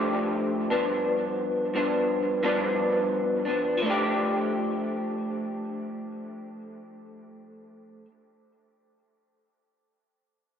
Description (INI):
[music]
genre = indie pop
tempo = 87 BPM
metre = 4/4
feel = swing 60% on 16ths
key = F lydian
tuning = A4 = 439 Hz
[part]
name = electric guitar through a small old amp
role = solo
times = 0.0-8.1 s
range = G2 to G4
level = -26 LUFS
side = equal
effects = ensemble chorus, vibrato effect, dub echo
[sound]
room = light reverb, digital ambience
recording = echo-heavy mix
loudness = -24 LUFS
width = side -8 dB against mid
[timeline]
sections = 0.0-3.8 A section; 3.8-6.6 B section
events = none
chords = 0.0 F69; 0.7 G7; 3.8 F69